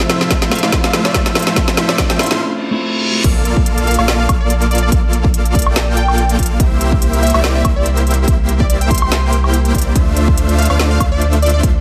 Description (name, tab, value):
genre	future bass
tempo	143 BPM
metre	4/4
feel	swing 55% on 16ths, half-time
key	unclear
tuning	A4 = 441 Hz
part	clean electric guitar	accompaniment	0.0-3.2 s	F3 to E5	-23 LUFS	equal	sidechain pumping, digital delay
part	ethereal airy pad	sustained chords	0.1-2.4 s	C3 to A3	-36 LUFS	equal	none
part	dense compressed supersaw	riff	0.0-11.8 s	A3 to G5	-21 LUFS	equal	sidechain pumping, digital delay
part	trap drum kit	drums	0.0-11.7 s	crash cymbal, hi-hat, snare drum, woodblock	-21 LUFS	equal	studio reverb
part	riser, reverse cymbal and impact	sound effects	1.8-4.9 s	none	-27 LUFS	equal	none
part	electronic kick drum	drums	0.3-11.7 s	none	-18 LUFS	equal	studio reverb
part	plucky unison lead	melody	0.5-11.6 s	D5 to C6	-24 LUFS	equal	subtle chorus, sidechain pumping
part	saturated sub bass	bass	3.2-11.8 s	Bb1 to D2	-18 LUFS	equal	sidechain pumping
room	light reverb, digital ambience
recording	none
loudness	-14 LUFS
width	mono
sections	0.0-3.2 A section; 3.2-11.8 B section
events	build-up 0.0-3.2; drum fill 0.0-2.4; break 2.4-3.2; reverse cymbal 2.4-3.2; drop 3.2-11.8; impact 3.2-4.9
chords	0.0 Fmaj7; 3.2 Bbmaj7; 6.6 C7; 10.0 Dm9